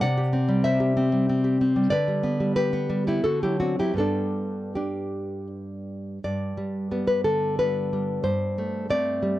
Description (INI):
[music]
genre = romantic piece for solo classical guitar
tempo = 77-98 BPM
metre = 3/4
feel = rubato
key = G major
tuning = A4 = 440 Hz
[part]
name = nylon-string guitar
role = solo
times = 0.0-9.4 s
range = G2 to F#5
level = -22 LUFS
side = equal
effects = none
[sound]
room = light reverb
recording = dry, close 1970s-style studio recording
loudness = -22 LUFS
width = side -15 dB against mid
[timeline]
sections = 0.0-6.2 A section; 6.2-9.4 B section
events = none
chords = 0.0 C; 1.9 G/D; 3.2 D7; 4.0 G; 8.3 Am7/G